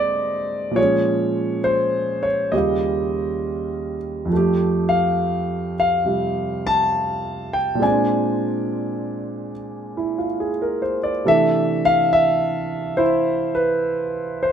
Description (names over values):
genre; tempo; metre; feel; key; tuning
solo jazz; 69 BPM; 4/4; swing 67% on 8ths, rubato; unclear; A4 = 440 Hz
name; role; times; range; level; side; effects
warm concert grand piano; solo; 0.0-14.5 s; Eb2 to A5; -18 LUFS; equal; none
room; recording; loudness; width
light reverb; none; -18 LUFS; side -8 dB against mid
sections
0.0-14.5 A section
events
none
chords
0.0 Abmaj9#11; 0.8 Bbm7; 2.5 Eb9; 4.3 Fadd9; 7.8 Bb9; 11.3 C69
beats
| 0.78 1.65 2.53 3.42 | 4.31 5.19 6.07 6.94 | 7.81 8.68 9.55 10.40 | 11.26 12.12 12.98 13.86